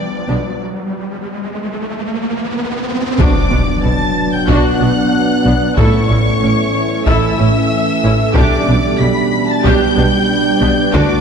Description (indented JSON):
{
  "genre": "cinematic, hybrid orchestral and electronic film score",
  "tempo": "93 BPM",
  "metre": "4/4",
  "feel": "straight",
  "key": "B minor",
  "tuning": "A4 = 440 Hz",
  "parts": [
    { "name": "rich symphonic violin section", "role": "melody", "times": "0.0-11.2 s", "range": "D5 to B6", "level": "-21 LUFS", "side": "left 1 dB", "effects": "none" },
    { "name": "evolving wavetable pad", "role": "sustained chords", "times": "0.0-11.2 s", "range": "E3 to E5", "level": "-21 LUFS", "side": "right 1 dB", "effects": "ensemble chorus, built-in reverb" },
    { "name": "riser and impact", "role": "sound effects", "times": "0.0-5.8 s", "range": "none", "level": "-20 LUFS", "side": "equal", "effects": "none" },
    { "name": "clear symphonic violin section", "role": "second line", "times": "0.3-11.2 s", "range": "B3 to B5", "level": "-24 LUFS", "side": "left 2 dB", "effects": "none" },
    { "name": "rich symphonic viola section", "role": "accompaniment", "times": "0.3-11.2 s", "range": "F#3 to A4", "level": "-20 LUFS", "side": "equal", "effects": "none" },
    { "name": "rich symphonic cello section", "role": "bass", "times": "0.3-11.0 s", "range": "A2 to D3", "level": "-20 LUFS", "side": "right 1 dB", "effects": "none" },
    { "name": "rich symphonic double bass section", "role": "bass", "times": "0.3-11.0 s", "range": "A1 to D2", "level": "-18 LUFS", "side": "right 2 dB", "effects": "none" },
    { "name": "dark trombone section", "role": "sustained chords", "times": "3.2-11.2 s", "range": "A2 to A3", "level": "-20 LUFS", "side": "right 5 dB", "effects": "none" },
    { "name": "mellow French horn section", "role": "sustained chords", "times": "3.2-11.2 s", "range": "B3 to G4", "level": "-21 LUFS", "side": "left 4 dB", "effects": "none" },
    { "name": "taiko ensemble", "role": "drums", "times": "3.2-11.2 s", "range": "none", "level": "-19 LUFS", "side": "left 1 dB", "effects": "none" }
  ],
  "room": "wet scoring stage reverb, RT60 1.9 s",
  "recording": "dark, warm production",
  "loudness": "-12 LUFS",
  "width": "side -6 dB against mid",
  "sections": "0.0-3.2 A section; 3.2-11.2 A section",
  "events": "riser 0.0-3.2; impact 3.2-5.8",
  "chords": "0.0 G; 0.6 N.C.; 3.2 Bm; 5.8 A; 8.4 G/B"
}